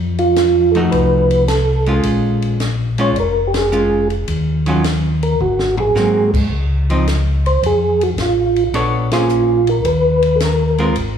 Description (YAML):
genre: soul jazz organ trio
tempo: 108 BPM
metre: 4/4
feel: swing 68% on 8ths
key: unclear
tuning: A4 = 440 Hz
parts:
  - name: mellow tonewheel organ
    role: bass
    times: 0.0-11.2 s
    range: F1 to Ab2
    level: -18 LUFS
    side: left 1 dB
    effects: chorus vibrato, slow rotary speaker
  - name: percussive tonewheel organ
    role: melody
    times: 0.2-10.9 s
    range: F4 to Db5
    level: -16 LUFS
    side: right 2 dB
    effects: slow rotary speaker, chorus vibrato, slapback echo
  - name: compact cocktail drum kit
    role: drums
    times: 0.2-11.1 s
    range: crash cymbal, hi-hat, kick drum, ride cymbal, snare drum, toms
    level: -26 LUFS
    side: left 1 dB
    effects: none
  - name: archtop guitar, miked and amplified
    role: accompaniment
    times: 0.8-11.0 s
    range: Eb3 to Db5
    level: -19 LUFS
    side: right 1 dB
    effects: slapback echo
room: light reverb, studio reverb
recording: live gig heard through the venue's PA, club reverb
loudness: -13 LUFS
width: side -8 dB against mid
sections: 0.0-11.2 A section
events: band accent 3.4, 9.0; drum fill 5.4-6.0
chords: 0.0 F7b9; 2.1 Bbm7; 4.3 Ebm9; 5.4 Ab9; 6.5 Db; 8.7 Bbm9; 9.8 Ebsus2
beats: 0.38 0.94 1.49 | 2.05 2.61 3.17 3.73 | 4.28 4.84 5.40 5.95 | 6.51 7.07 7.62 8.18 | 8.74 9.29 9.85 10.41 | 10.96